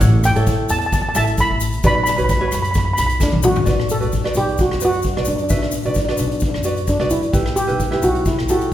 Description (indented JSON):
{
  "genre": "calypso",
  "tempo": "131 BPM",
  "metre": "4/4",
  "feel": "swing 53% on 16ths",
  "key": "B minor",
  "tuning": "A4 = 440 Hz",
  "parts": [
    { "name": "steel pan", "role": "melody", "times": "0.0-8.7 s", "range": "D4 to B5", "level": "-20 LUFS", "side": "equal", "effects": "none" },
    { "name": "ukulele", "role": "accompaniment", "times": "0.0-8.7 s", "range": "E4 to E5", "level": "-23 LUFS", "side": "right 1 dB", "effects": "none" },
    { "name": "upright bass", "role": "bass", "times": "0.0-8.7 s", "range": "A1 to F#2", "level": "-21 LUFS", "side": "equal", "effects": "none" },
    { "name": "street-band drum kit", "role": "drums", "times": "0.0-8.7 s", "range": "hi-hat, kick drum, rim click, snare drum, toms", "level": "-21 LUFS", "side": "left 1 dB", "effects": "none" },
    { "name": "tube shaker", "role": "percussion", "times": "0.0-8.7 s", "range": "none", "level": "-32 LUFS", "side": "left 6 dB", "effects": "none" }
  ],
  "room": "wet recital hall reverb, RT60 1.4 s",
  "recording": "recorded in a church or concert hall",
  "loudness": "-15 LUFS",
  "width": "side -12 dB against mid",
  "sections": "0.0-3.7 A section; 3.7-8.7 B section",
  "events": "drum fill 3.2-3.7",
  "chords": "0.0 A7; 1.8 Bsus2; 3.7 Bm; 7.3 Em/B"
}